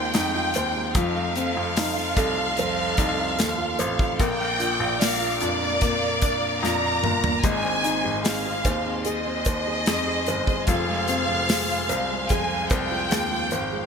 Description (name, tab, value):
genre	pop ballad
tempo	74 BPM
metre	4/4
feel	straight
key	unclear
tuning	A4 = 440 Hz
part	warm studio violin section	second line	0.0-13.9 s	D5 to Bb5	-26 LUFS	equal	ping-pong delay
part	felt-muted upright piano	accompaniment	0.0-13.9 s	Eb3 to D5	-29 LUFS	left 2 dB	none
part	warm studio string section	sustained chords	0.0-13.9 s	Eb4 to D6	-31 LUFS	equal	none
part	nylon-string guitar	arpeggios	0.0-13.9 s	F2 to Ab4	-31 LUFS	right 5 dB	analog chorus, ping-pong delay
part	clear baby grand piano	bass	0.0-13.9 s	F1 to F2	-30 LUFS	left 2 dB	none
part	modern studio drum kit	drums	0.1-13.7 s	hi-hat, kick drum, snare drum, toms	-25 LUFS	equal	none
room	moderate plate reverb, RT60 2.6 s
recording	bright 1980s-style digital production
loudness	-21 LUFS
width	side -6 dB against mid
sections	0.0-13.9 A section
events	drum fill 6.6-7.4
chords	0.0 Ab6/Eb; 1.0 F7; 4.2 Bb; 7.4 Ab; 10.7 Fm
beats	0.14 | 0.95 1.76 2.57 3.38 | 4.20 5.01 5.82 6.63 | 7.44 8.25 9.06 9.87 | 10.68 11.49 12.30 13.11